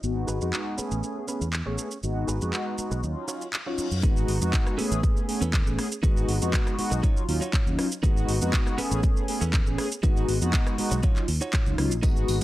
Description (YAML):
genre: filtered disco house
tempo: 120 BPM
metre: 4/4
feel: straight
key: G# dorian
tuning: A4 = 439 Hz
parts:
  - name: mellow synth brass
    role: accompaniment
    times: 0.0-12.4 s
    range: F#3 to G#4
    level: -29 LUFS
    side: left 1 dB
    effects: chorus, phaser, sidechain pumping, low-pass filter
  - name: fingered electric bass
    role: bass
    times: 0.0-12.4 s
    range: G#1 to F#2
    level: -28 LUFS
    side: equal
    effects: transformer saturation, sidechain pumping, low-pass filter
  - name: house drum kit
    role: drums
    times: 0.0-12.4 s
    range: handclaps, hi-hat, rim click, shaker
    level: -32 LUFS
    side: right 1 dB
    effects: sidechain pumping on perc, sidechain pumping on hats
  - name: direct-recorded clean electric guitar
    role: riff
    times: 0.3-12.4 s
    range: C#4 to C#5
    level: -36 LUFS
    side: right 3 dB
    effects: sidechain pumping, low-pass filter
  - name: reverse cymbal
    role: sound effects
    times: 3.5-4.0 s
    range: none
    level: -40 LUFS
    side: left 5 dB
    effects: none
  - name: electronic kick drum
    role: drums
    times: 4.0-12.1 s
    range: none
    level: -23 LUFS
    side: equal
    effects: none
  - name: tambourine and congas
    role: percussion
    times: 12.0-12.4 s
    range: none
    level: -36 LUFS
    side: left 1 dB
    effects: sidechain pumping on perc, low-pass filter on perc
room: little or no reverb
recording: dry, gritty hardware recording, transformer saturation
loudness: -23 LUFS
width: side -16 dB against mid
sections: 0.0-4.0 A section; 4.0-12.4 B section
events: filter sweep 0.0-4.0; reverse cymbal 3.5-4.0; drop 4.0-12.4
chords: 0.0 G#m7; 0.8 Amaj9; 2.0 G#m7; 3.0 D#m9; 4.0 G#m7; 4.8 Amaj9; 6.0 G#m7; 7.0 D#m9; 8.0 G#m7; 8.8 Amaj9; 10.0 G#m7; 11.0 D#m9